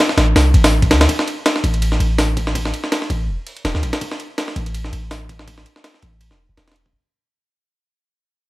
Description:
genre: drum and bass, jungle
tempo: 164 BPM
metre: 4/4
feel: swing 55% on 16ths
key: A minor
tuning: A4 = 440 Hz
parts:
  - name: jungle sampler-style drum kit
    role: drums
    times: 0.1-6.9 s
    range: hi-hat, kick drum, ride cymbal, snare drum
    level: -17 LUFS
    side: equal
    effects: high-pass filter on cymbals, high-pass filter on snare, high-pass filter on hats, high-pass filter on kick, high-pass filter on room
  - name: warm 808-style bass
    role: bass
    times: 0.2-6.9 s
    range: E1 to D2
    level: -17 LUFS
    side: equal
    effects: none
room: little or no reverb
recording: vinyl crackle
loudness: -15 LUFS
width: side -19 dB against mid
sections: 0.0-1.1 A section; 1.1-6.9 B section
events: drop 0.0-1.1; fade-out 1.1-6.9; filter sweep on 808-style bass 1.1-6.9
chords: none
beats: 0.35 0.72 | 1.08 1.45 1.82 2.18 | 2.55 2.91 3.28 3.65 | 4.01 4.38 4.74 5.11 | 5.47 5.84 6.21 6.57

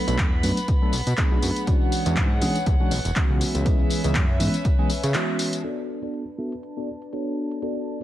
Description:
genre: filtered disco house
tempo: 121 BPM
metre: 4/4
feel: swing 56% on 16ths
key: B dorian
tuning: A4 = 441 Hz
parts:
  - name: tine electric piano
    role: accompaniment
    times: 0.0-8.0 s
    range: E3 to E5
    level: -27 LUFS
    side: equal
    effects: phaser, sidechain pumping, low-pass filter
  - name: warm studio violin section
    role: sustained chords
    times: 0.0-8.0 s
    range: B3 to B5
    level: -32 LUFS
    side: equal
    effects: sidechain pumping, low-pass filter
  - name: fat analog bass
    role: bass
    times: 0.1-5.1 s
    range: E1 to C#3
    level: -25 LUFS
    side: equal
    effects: sidechain pumping, low-pass filter
  - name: punchy analog drum machine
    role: drums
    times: 0.1-8.0 s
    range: crash cymbal, handclaps, hi-hat, tambourine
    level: -29 LUFS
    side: left 1 dB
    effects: sidechain pumping on hats, low-pass filter on hats, sidechain pumping on perc, low-pass filter on perc, low-pass filter on snare, sidechain pumping on cymbals, low-pass filter on cymbals
  - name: tambourine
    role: percussion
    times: 0.1-8.0 s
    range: none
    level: -45 LUFS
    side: left 6 dB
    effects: none
  - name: electronic kick drum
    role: drums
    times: 0.2-4.8 s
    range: none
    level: -22 LUFS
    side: equal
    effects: none
room: light reverb, digital ambience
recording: none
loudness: -21 LUFS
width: side -13 dB against mid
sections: 0.0-5.6 A section; 5.6-8.0 B section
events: break 5.1-5.6; band accent 5.1; filter sweep 5.6-8.0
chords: 0.0 Bm7; 1.7 E13; 3.4 C#m7; 5.6 Bm7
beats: 0.19 0.68 1.18 | 1.67 2.17 2.67 3.16 | 3.66 4.15 4.65 5.14 | 5.64 6.14 6.63 7.13 | 7.62

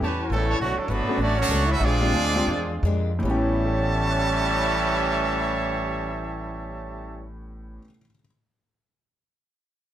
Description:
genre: jazz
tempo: 146-209 BPM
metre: 4/4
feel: swing 62% on 8ths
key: A mixolydian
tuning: A4 = 440 Hz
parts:
  - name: clear baby grand piano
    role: accompaniment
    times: 0.0-8.3 s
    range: A2 to A6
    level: -30 LUFS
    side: left 1 dB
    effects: none
  - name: picked old ladder-braced acoustic guitar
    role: accompaniment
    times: 0.0-7.9 s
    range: A2 to C#5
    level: -33 LUFS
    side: left 3 dB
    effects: none
  - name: clear trumpet section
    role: stabs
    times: 0.0-0.6 s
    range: D4 to A5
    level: -30 LUFS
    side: right 2 dB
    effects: none
  - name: upright bass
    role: bass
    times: 0.0-7.8 s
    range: G1 to F2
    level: -27 LUFS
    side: equal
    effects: none
  - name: brilliant trumpet section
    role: melody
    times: 0.3-7.3 s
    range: F#3 to A5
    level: -26 LUFS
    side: right 2 dB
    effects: none
  - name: brilliant trombone section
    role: second line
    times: 0.3-7.3 s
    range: A2 to E4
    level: -28 LUFS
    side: right 2 dB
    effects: none
room: light reverb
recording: none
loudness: -21 LUFS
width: side -11 dB against mid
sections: 0.6-3.2 A section; 3.2-6.5 B section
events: slowing down 0.6-3.2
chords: 0.0 A9; 0.6 Bm9; 1.8 Bb13; 3.2 A13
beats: 0.03 0.32 | 0.61 0.90 1.19 1.49 | 1.80 2.13 2.47 2.84 | 3.23 3.64 4.05 4.46 | 4.87 5.28 5.69 6.10

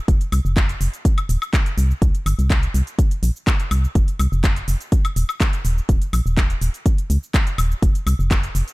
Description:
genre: piano house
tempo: 124 BPM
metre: 4/4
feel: straight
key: unclear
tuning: A4 = 442 Hz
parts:
  - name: organ-like FM bass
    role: bass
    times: 0.1-8.6 s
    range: Eb1 to Db2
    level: -19 LUFS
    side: equal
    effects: sidechain pumping
  - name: electronic kick drum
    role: drums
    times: 0.1-8.4 s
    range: none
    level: -17 LUFS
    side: equal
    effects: small room ambience
  - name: house drum kit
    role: drums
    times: 0.1-8.7 s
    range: handclaps, hi-hat, shaker, woodblock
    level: -27 LUFS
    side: left 1 dB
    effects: small room ambience
room: digital ambience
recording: dark, warm production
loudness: -17 LUFS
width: side -22 dB against mid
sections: 0.0-8.7 A section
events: none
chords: none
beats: | 0.08 0.57 1.05 1.53 | 2.02 2.50 2.99 3.47 | 3.95 4.44 4.92 5.41 | 5.89 6.37 6.86 7.34 | 7.83 8.31

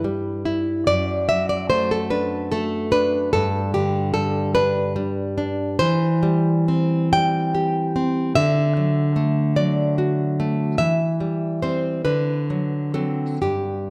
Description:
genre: romantic piece for solo classical guitar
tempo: 40-50 BPM (dotted quarters)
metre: 6/8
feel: rubato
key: unclear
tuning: A4 = 440 Hz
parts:
  - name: nylon-string guitar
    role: solo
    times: 0.0-13.9 s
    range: F#2 to G5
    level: -21 LUFS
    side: equal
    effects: none
room: wet recital hall reverb, RT60 1.7 s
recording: none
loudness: -21 LUFS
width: mono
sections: 0.0-13.9 A section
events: none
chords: 0.0 Em/G; 0.9 D/F#; 3.3 G; 5.8 C/E; 8.4 D; 10.8 C/E; 12.1 D6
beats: | 0.88 2.12 | 3.34 4.55 | 5.80 7.13 | 8.36 9.57 | 10.80 12.05 | 13.42

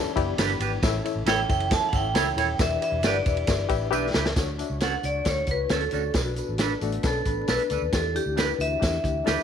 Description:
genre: uptempo 1960s-style soul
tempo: 135 BPM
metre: 4/4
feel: straight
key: E dorian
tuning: A4 = 436 Hz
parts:
  - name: reed electric piano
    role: accompaniment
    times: 0.0-9.4 s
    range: A2 to B5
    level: -31 LUFS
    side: left 12 dB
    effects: fast tremolo
  - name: mellow tonewheel organ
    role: sustained chords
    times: 0.0-9.4 s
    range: E3 to C#5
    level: -38 LUFS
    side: right 1 dB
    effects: overdrive, chorus vibrato, slow rotary speaker
  - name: hollow-body jazz guitar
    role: riff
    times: 0.0-0.8, 6.8-7.9 s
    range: A3 to B4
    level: -34 LUFS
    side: left 10 dB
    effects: none
  - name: vintage muted fingered electric bass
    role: bass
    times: 0.1-9.4 s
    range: D#1 to E2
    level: -30 LUFS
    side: equal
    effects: none
  - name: vintage drum kit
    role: drums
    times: 0.2-9.4 s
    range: hi-hat, kick drum, ride cymbal, snare drum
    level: -27 LUFS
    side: equal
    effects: none
  - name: tambourine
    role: percussion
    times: 0.2-9.4 s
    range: none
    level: -41 LUFS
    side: right 13 dB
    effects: none
  - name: clean electric guitar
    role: stabs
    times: 0.4-9.4 s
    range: C#4 to C#5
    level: -29 LUFS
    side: right 12 dB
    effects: wide subtle chorus
  - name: vibraphone with hard mallets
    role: melody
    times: 1.3-9.4 s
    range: F#4 to A5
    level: -28 LUFS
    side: equal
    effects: none
room: light reverb, studio ambience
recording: 1960s-style stereo with parts hard left and right, vinyl crackle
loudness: -22 LUFS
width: side -8 dB against mid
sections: 0.0-4.4 A section; 4.4-9.4 B section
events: reed electric piano fill 3.5-4.4; drum fill 3.9-4.4; vibraphone solo 4.4-9.4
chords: 0.0 Em7; 0.8 A; 2.6 Em7; 4.4 Dmaj7; 6.1 Bm7; 7.9 Em7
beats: 0.38 | 0.83 1.27 1.71 2.15 | 2.60 3.04 3.48 3.93 | 4.37 4.81 5.26 5.70 | 6.15 6.59 7.04 7.49 | 7.93 8.38 8.82 9.27

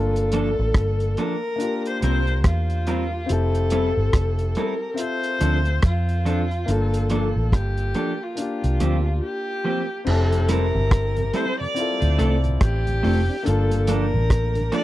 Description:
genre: lovers rock reggae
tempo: 71 BPM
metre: 4/4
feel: swing 60% on 16ths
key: F major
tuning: A4 = 439 Hz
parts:
  - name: rich viola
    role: melody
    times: 0.0-14.8 s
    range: F4 to D5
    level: -26 LUFS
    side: left 1 dB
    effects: tape echo
  - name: clear grand piano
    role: accompaniment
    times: 0.0-14.8 s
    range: Bb3 to A5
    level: -29 LUFS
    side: left 4 dB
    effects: tape echo
  - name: vintage muted fingered electric bass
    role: bass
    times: 0.0-14.7 s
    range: F1 to F2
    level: -21 LUFS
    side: equal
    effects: none
  - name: cloth-damped thuddy drum kit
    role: drums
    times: 0.2-14.8 s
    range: crash cymbal, hi-hat, kick drum, rim click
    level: -22 LUFS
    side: equal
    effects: none
  - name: electric guitar through a small old amp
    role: stabs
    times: 0.3-14.8 s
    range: F3 to Bb4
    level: -24 LUFS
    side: right 1 dB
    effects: none
  - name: mellow tonewheel organ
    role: accompaniment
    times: 10.3-14.8 s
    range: D2 to F4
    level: -33 LUFS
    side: right 4 dB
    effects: overdrive, slow rotary speaker, tape echo
room: little or no reverb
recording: dry, close 1970s-style studio recording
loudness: -19 LUFS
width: side -15 dB against mid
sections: 0.0-10.1 A section; 10.1-14.8 B section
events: break 9.2-10.1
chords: 0.0 Gm9; 1.6 C7sus4; 3.3 Fmaj9; 5.0 Dm7; 6.7 Gm9; 8.4 C7sus4; 10.1 Fmaj9; 11.8 Dm7; 13.5 Gm9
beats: 0.75 1.60 2.45 | 3.29 4.14 4.99 5.83 | 6.68 7.53 8.38 9.22 | 10.07 10.92 11.76 12.61 | 13.46 14.30

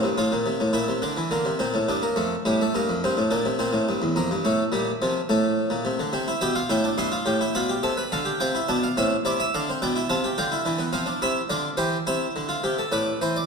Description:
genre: classical, baroque-style 3-part fugue for harpsichord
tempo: 70 BPM (dotted quarters)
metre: 12/8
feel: straight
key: F major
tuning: A4 = 439 Hz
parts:
  - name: harpsichord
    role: solo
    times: 0.0-13.5 s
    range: E2 to C6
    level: -22 LUFS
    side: equal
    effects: none
room: wet concert hall reverb, RT60 2.1 s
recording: minimal, uncompressed stereo recording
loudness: -22 LUFS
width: side -5 dB against mid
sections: 0.0-12.9 A section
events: none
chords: 0.0 F; 1.0 Dm; 2.7 Gm7; 4.4 F/A; 6.1 C; 7.8 Am/C; 9.5 Dm7; 11.2 C; 12.9 Am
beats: 0.17 1.03 1.88 | 2.73 3.59 4.44 5.29 | 6.14 6.99 7.83 8.68 | 9.53 10.38 11.23 12.09 | 12.94

